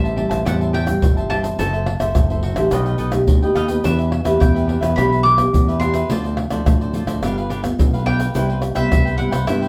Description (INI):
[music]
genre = samba and choro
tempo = 106 BPM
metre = 4/4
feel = straight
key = unclear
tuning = A4 = 438 Hz
[part]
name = bowl-back mandolin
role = melody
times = 0.0-9.7 s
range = E5 to D6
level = -25 LUFS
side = equal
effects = none
[part]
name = cavaquinho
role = accompaniment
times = 0.0-9.7 s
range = D4 to A5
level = -28 LUFS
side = equal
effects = none
[part]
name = nylon-string guitar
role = accompaniment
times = 0.0-9.7 s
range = G2 to A4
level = -25 LUFS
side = equal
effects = none
[part]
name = growling fingered electric bass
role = bass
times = 0.0-9.7 s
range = F#1 to G2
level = -24 LUFS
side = equal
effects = overdrive
[part]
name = egg shaker, pandeiro, surdo and tamborim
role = percussion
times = 0.0-9.7 s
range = none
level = -22 LUFS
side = equal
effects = none
[sound]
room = wet studio reverb, RT60 0.5 s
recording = heard from further back in the room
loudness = -18 LUFS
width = mono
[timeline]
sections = 0.0-9.7 A section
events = none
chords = 0.0 Am7; 1.6 F#m7b5; 2.7 B7alt; 3.8 Em7; 6.1 Dm9; 7.2 G9; 8.4 Cmaj7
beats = 0.46 1.02 | 1.59 2.15 2.72 3.28 | 3.84 4.41 4.97 5.54 | 6.10 6.66 7.22 7.79 | 8.35 8.91 9.48